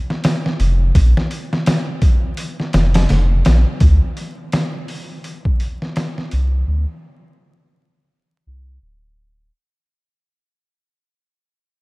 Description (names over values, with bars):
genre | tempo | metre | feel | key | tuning
trip hop | 84 BPM | 4/4 | swing 59% on 16ths | unclear | A4 = 440 Hz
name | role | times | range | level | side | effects
trip hop sampler-style drum kit | drums | 0.1-6.5 s | hi-hat, kick drum, snare drum | -18 LUFS | equal | overdrive, studio reverb
soft dub sub bass | bass | 0.6-9.5 s | D1 to D2 | -14 LUFS | equal | tube saturation
room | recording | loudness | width
light reverb | vinyl crackle | -15 LUFS | side -24 dB against mid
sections
0.0-3.8 A section; 3.8-9.5 B section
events
fade-out 3.8-9.5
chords
none